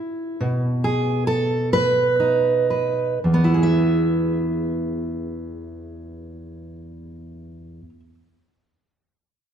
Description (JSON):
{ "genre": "folk, solo fingerstyle acoustic guitar", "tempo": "53-71 BPM", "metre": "3/4", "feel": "rubato", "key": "E major", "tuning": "A4 = 441 Hz", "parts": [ { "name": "fingerpicked steel-string acoustic guitar", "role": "solo", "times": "0.0-8.1 s", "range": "E2 to E5", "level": "-20 LUFS", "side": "right 2 dB", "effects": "none" } ], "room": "wet large studio reverb, RT60 1.2 s", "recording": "minimal, uncompressed stereo recording, lossy compression artefacts", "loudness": "-18 LUFS", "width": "side -8 dB against mid", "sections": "0.4-3.2 A section; 3.2-6.5 B section", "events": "slowing down 0.0-3.2", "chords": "0.4 B; 3.2 E", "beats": "| 0.40 1.27 2.20 | 3.24 4.34 5.42" }